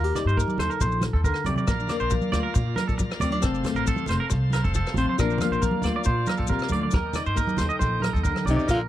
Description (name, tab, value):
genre	highlife guitar band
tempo	137 BPM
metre	4/4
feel	straight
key	Bb major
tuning	A4 = 441 Hz
part	nylon-string guitar	accompaniment	0.0-8.9 s	F2 to A4	-29 LUFS	left 6 dB	none
part	twangy electric guitar	arpeggios	0.0-8.9 s	A4 to F5	-28 LUFS	right 4 dB	tape echo
part	upright bass	bass	0.0-8.9 s	F1 to Bb2	-27 LUFS	equal	none
part	maracas	percussion	0.1-8.8 s	none	-38 LUFS	left 15 dB	none
part	vintage drum kit	drums	0.2-8.8 s	hi-hat, kick drum, rim click	-27 LUFS	equal	none
part	congas	percussion	0.2-8.7 s	none	-31 LUFS	right 3 dB	none
part	overdriven tonewheel organ	sustained chords	1.7-8.7 s	C5 to Bb5	-38 LUFS	equal	slow rotary speaker
part	mellow alto saxophone	melody	8.5-8.8 s	Eb4 to F4	-24 LUFS	equal	none
part	growling tenor saxophone	second line	8.5-8.8 s	C3 to D3	-33 LUFS	left 7 dB	none
room	little or no reverb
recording	dry, close 1970s-style studio recording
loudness	-22 LUFS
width	side -13 dB against mid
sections	0.0-8.7 A section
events	drum fill 8.4-8.7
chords	0.0 Eb; 1.7 Bb; 3.4 F; 5.2 Bb; 6.9 Eb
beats	0.37 0.80 1.24 | 1.68 2.12 2.56 2.99 | 3.43 3.87 4.31 4.75 | 5.18 5.62 6.06 6.50 | 6.93 7.37 7.81 8.25 | 8.69